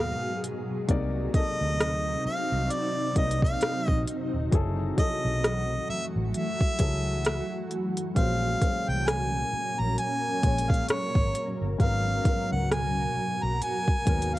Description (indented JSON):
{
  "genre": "contemporary R&B",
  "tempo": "66 BPM",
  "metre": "4/4",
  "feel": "swing 58% on 16ths",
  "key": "unclear",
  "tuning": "A4 = 440 Hz",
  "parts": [
    { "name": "clear harmonica", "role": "melody", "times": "0.0-14.4 s", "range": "Db5 to Bb5", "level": "-30 LUFS", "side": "equal", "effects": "none" },
    { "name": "dark baby grand piano", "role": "accompaniment", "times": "0.0-14.4 s", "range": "Ab2 to D5", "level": "-35 LUFS", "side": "left 5 dB", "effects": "cassette tape" },
    { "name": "granular cloud pad", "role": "sustained chords", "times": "0.0-14.4 s", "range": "Bb2 to Bb4", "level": "-32 LUFS", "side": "equal", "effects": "built-in reverb, sidechain pumping, cassette tape" },
    { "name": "vintage muted fingered electric bass", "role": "bass", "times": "0.0-14.4 s", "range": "Eb1 to Eb2", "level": "-30 LUFS", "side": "equal", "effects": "none" },
    { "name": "smooth R&B drum kit", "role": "drums", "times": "0.4-14.4 s", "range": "hi-hat, kick drum, rim click", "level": "-25 LUFS", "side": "equal", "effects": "overdrive" }
  ],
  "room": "light reverb",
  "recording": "home recording on cassette",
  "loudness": "-24 LUFS",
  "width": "side -16 dB against mid",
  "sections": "0.0-14.4 A section",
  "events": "none",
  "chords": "0.0 Abm9; 0.9 Cm9; 4.5 Gbm9; 8.2 Bbm9; 11.8 Abm9"
}